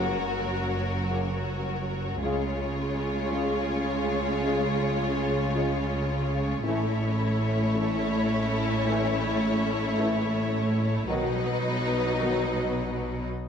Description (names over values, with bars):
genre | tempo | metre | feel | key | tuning
cinematic, epic orchestral film score | 108 BPM | 4/4 | straight | unclear | A4 = 440 Hz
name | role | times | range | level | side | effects
rich studio violin section | melody | 0.0-13.3 s | Bb4 to Db5 | -35 LUFS | left 4 dB | none
rich studio violin section | second line | 0.0-13.3 s | Eb4 to Gb4 | -33 LUFS | left 3 dB | none
rich symphonic viola section | accompaniment | 0.0-13.3 s | Gb3 to A3 | -34 LUFS | right 2 dB | none
clear trombone section | sustained chords | 0.0-12.4 s | Db3 to Bb3 | -35 LUFS | equal | none
mellow French horn section | sustained chords | 0.0-12.4 s | Cb4 to Gb4 | -36 LUFS | left 4 dB | none
rich symphonic string section | sustained chords | 0.0-13.3 s | Cb4 to Eb5 | -34 LUFS | left 2 dB | none
rich symphonic cello section | bass | 0.0-13.3 s | Gb2 to Db3 | -30 LUFS | right 1 dB | none
rich symphonic double bass section | bass | 0.0-13.3 s | Gb1 to Db2 | -32 LUFS | right 2 dB | none
room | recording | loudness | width
moderate recital hall reverb, RT60 1.5 s | dark, warm production | -24 LUFS | side -7 dB against mid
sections
0.0-13.5 A section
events
none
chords
0.0 Gb; 2.2 Db; 6.6 A; 11.1 Cb